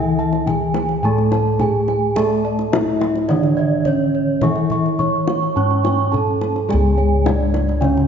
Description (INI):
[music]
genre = Javanese gamelan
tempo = 106 BPM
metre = 4/4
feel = straight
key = C# pelog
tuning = A4 = 438 Hz
[part]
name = gamelan-type bronze metallophone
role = melody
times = 0.0-8.1 s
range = C#4 to C#5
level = -21 LUFS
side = right 4 dB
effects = none
[part]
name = gamelan-type bronze metallophone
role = accompaniment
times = 0.0-8.1 s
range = C#3 to C#4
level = -22 LUFS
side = left 2 dB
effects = none
[part]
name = gamelan-type bossed gongs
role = arpeggios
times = 0.0-8.1 s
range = C#5 to C#6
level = -27 LUFS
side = left 2 dB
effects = none
[part]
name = gamelan-type bronze metallophone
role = arpeggios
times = 0.0-8.1 s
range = C#5 to C#6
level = -25 LUFS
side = right 6 dB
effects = none
[part]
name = gamelan-type bossed gongs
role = bass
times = 0.0-8.1 s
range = C#2 to A4-20c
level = -21 LUFS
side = left 1 dB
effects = none
[part]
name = kendang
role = percussion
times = 0.3-8.0 s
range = none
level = -25 LUFS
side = left 3 dB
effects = none
[sound]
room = moderate scoring stage reverb, RT60 2.0 s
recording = nothing above 7.8 kHz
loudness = -15 LUFS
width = side -7 dB against mid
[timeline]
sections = 0.0-8.1 A section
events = none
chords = none